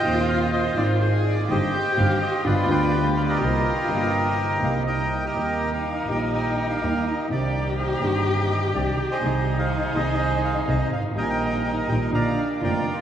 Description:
tango; 124 BPM; 4/4; rubato; C minor, Eb major from 5.4 s; A4 = 443 Hz
bandoneon; melody; 0.0-13.0 s; Eb4 to Bb5; -25 LUFS; right 1 dB
warm cello; second line; 0.0-13.0 s; D4 to Ab4; -28 LUFS; left 2 dB
warm concert grand piano; accompaniment; 0.0-12.8 s; Eb1 to D5; -26 LUFS; left 1 dB
dark double bass; bass; 0.1-12.8 s; F1 to Eb2; -27 LUFS; right 2 dB
wet cathedral reverb, RT60 6.4 s; in a vast, echoing space, vinyl crackle, studio reverb; -20 LUFS; side -9 dB against mid
0.0-5.4 A section; 5.4-13.0 B section
0.0 Ab6; 1.5 Cm/G; 2.4 G7; 3.4 Cm7; 5.4 Eb; 7.3 Cmadd9; 9.2 Ab/C; 11.2 Eb/Bb; 12.1 Bb

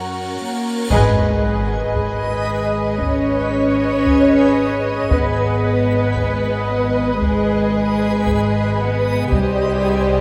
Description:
cinematic, suspense film score; 57 BPM; 4/4; straight; G# minor; A4 = 440 Hz
dark symphonic violin section; melody; 0.0-10.2 s; G4 to C#5; -26 LUFS; equal
dark studio violin section; second line; 0.0-10.2 s; F#4 to D#5; -28 LUFS; equal
dark symphonic viola section; accompaniment; 0.0-10.2 s; C#4 to C5; -28 LUFS; equal
backwards swelling texture; sustained chords; 0.0-10.2 s; Eb4 to D6; -29 LUFS; equal; built-in reverb
rich symphonic cello section; bass; 0.0-10.2 s; F#2 to C#4; -22 LUFS; equal
cymbal swell and sub drop; sound effects; 0.0-5.1 s; -29 LUFS; equal
dark symphonic double bass section; bass; 0.9-10.2 s; G#1 to C2; -25 LUFS; equal
taiko ensemble; drums; 0.9-10.2 s; -25 LUFS; equal
wet cathedral reverb, RT60 6.0 s; in a vast, echoing space; -18 LUFS; mono
0.9-10.2 A section
cymbal swell 0.0-0.9; band accent 0.9-2.0; impact 0.9-5.1
0.0 F#; 0.9 G#m; 9.3 Cmadd9

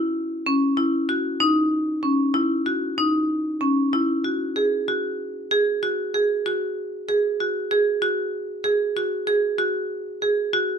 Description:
contemporary instrumental, contemporary; 190 BPM (eighths); 5/8; straight; A4 = 440 Hz
marimba with hard mallets; solo; 0.0-10.7 s; C#4 to G#4; -20 LUFS; right 1 dB
moderate studio reverb, RT60 0.6 s; minimal, uncompressed stereo recording; -20 LUFS; side -7 dB against mid
0.0-4.6 A section; 4.6-10.8 B section

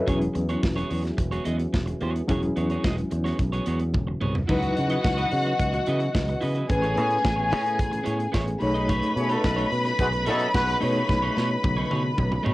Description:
disco; 109 BPM; 4/4; straight; A4 = 440 Hz
reed electric piano; accompaniment; 0.0-12.5 s; F#3 to E5; -30 LUFS; left 1 dB; fast tremolo, cassette tape
dark French horn section; sustained chords; 0.0-12.5 s; C#3 to D#5; -35 LUFS; equal
electric guitar at the edge of break-up; accompaniment; 0.1-12.5 s; A3 to D#5; -33 LUFS; right 3 dB; cassette tape
fingered electric bass; bass; 0.1-12.5 s; E1 to C#3; -27 LUFS; equal
modern studio drum kit; drums; 0.1-12.5 s; crash cymbal, hi-hat, kick drum, snare drum, toms; -28 LUFS; equal; cassette tape
rich symphonic string section; second line; 4.5-12.5 s; F#4 to B5; -27 LUFS; left 1 dB; cassette tape
warm horn section; stabs; 9.2-10.8 s; F#3 to C#5; -26 LUFS; equal; cassette tape
light reverb; home recording on cassette; -22 LUFS; side -18 dB against mid
0.0-4.5 A section; 4.5-12.5 B section
drum fill 3.9-4.5, 11.1-12.5
0.1 E69; 4.5 C#m11; 6.7 Amaj9; 8.6 B13

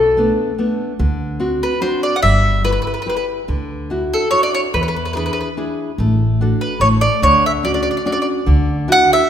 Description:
italian folk, Italian serenade; 144 BPM; 3/4; straight; D major; A4 = 440 Hz
mandolin; melody; 0.0-9.3 s; A4 to F#5; -16 LUFS; equal
nylon-string guitar; accompaniment; 0.0-9.2 s; B2 to B4; -20 LUFS; left 1 dB
upright bass; bass; 0.0-9.0 s; G1 to E2; -18 LUFS; equal
wet scoring stage reverb, RT60 2.0 s; minimal, uncompressed stereo recording; -15 LUFS; side -9 dB against mid
0.0-8.5 A section
0.0 Bm7; 1.0 D7; 2.2 G6; 3.5 Dadd9; 4.7 E7; 6.0 D/A; 6.8 N.C.; 7.2 Dmaj7; 8.5 Dadd9

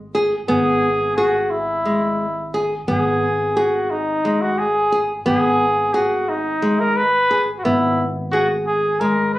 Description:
contemporary instrumental, chamber music in an uneven meter; 176 BPM (eighths); 7/8; straight; G# minor; A4 = 440 Hz
upright bass; bass; 0.0-9.4 s; G#1; -30 LUFS; equal
nylon-string guitar; arpeggios; 0.1-9.4 s; G#3 to G#4; -20 LUFS; equal
warm flugelhorn; melody; 0.5-9.4 s; D#4 to B4; -18 LUFS; equal
moderate studio reverb, RT60 0.7 s; recorded on a phone in the room, club reverb, compression; -16 LUFS; side -16 dB against mid
0.0-9.4 A section
0.0 G#m

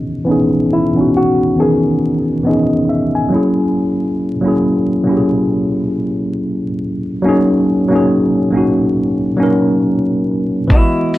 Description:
lo-fi hip hop; 69 BPM; 4/4; swing 58% on 16ths; A4 = 443 Hz
tine electric piano; accompaniment; 0.0-11.2 s; D#3 to G#5; -13 LUFS; equal; medium stereo tremolo, cassette tape, low-pass filter
archtop guitar, miked and amplified; melody; 0.7-2.2, 10.7-11.2 s; E4 to G#4; -17 LUFS; left 2 dB; low-pass filter
lo-fi sampler-style drum kit; drums; 10.7-11.2 s; hi-hat, kick drum, shaker; -11 LUFS; equal; vintage 12-bit sampler grit
wet small room reverb, RT60 0.5 s; dark, warm production, vinyl crackle; -12 LUFS; side -16 dB against mid
0.0-10.7 A section
filter sweep 0.0-10.7
0.0 C#m9; 3.3 F#9; 7.2 G#9sus4

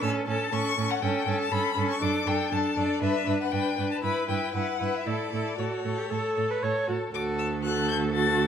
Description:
quick classical-period movement for string quartet; 119 BPM; 4/4; straight; D major; A4 = 441 Hz
clear violin; melody; 0.0-8.5 s; C#5 to A6; -30 LUFS; left 8 dB
warm violin; second line; 0.0-8.5 s; A4 to B4; -31 LUFS; left 3 dB
warm viola; accompaniment; 0.0-8.5 s; C#4 to C#5; -30 LUFS; right 2 dB
rich cello; bass; 0.0-8.5 s; D2 to A2; -31 LUFS; right 5 dB
moderate recital hall reverb, RT60 1.4 s; -25 LUFS; side -8 dB against mid
0.0-7.1 A section; 7.1-8.5 B section
0.0 A; 1.0 A7/G; 2.0 D/F#; 3.0 G; 4.0 Em/G; 5.1 A; 7.1 D

